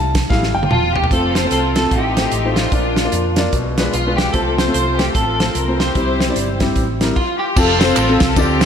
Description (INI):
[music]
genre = uptempo gospel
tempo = 149 BPM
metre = 4/4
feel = swing 61% on 8ths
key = F major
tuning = A4 = 440 Hz
[part]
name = warm baby grand piano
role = accompaniment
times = 0.0-8.7 s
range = A2 to A5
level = -20 LUFS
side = left 1 dB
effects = slapback echo
[part]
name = fingered electric bass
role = bass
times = 0.0-8.7 s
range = E1 to F2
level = -22 LUFS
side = equal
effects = none
[part]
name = warm soul drum kit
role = drums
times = 0.1-8.7 s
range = crash cymbal, hi-hat, kick drum, ride cymbal, snare drum, toms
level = -19 LUFS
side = right 1 dB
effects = none
[part]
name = clean electric guitar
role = melody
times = 0.7-7.4 s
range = F4 to C5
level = -24 LUFS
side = right 4 dB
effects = slapback echo
[part]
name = warm studio string section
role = melody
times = 0.7-8.7 s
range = Bb3 to C5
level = -20 LUFS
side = left 3 dB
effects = slapback echo
[part]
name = warm French horn section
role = sustained chords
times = 1.1-7.2 s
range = E3 to F4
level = -32 LUFS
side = right 1 dB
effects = none
[part]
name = tambourine and handclaps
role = percussion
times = 7.6-8.7 s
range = none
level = -28 LUFS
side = right 9 dB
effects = none
[sound]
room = moderate lush hall reverb, RT60 2.1 s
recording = big arena sound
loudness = -14 LUFS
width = side -8 dB against mid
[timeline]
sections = 0.0-1.1 A section; 1.1-7.6 B section; 7.6-8.7 C section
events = grand piano solo 0.0-1.1; drum fill 0.3-1.1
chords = 0.0 Fmaj7; 1.1 F; 1.9 F7/A; 2.7 Bb; 3.5 Bdim7; 4.3 F/C; 6.0 C; 7.6 F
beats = 0.31 0.71 | 1.11 1.51 1.92 2.32 | 2.72 3.13 3.53 3.94 | 4.34 4.74 5.15 5.55 | 5.96 6.36 6.76 7.17 | 7.57 7.97 8.37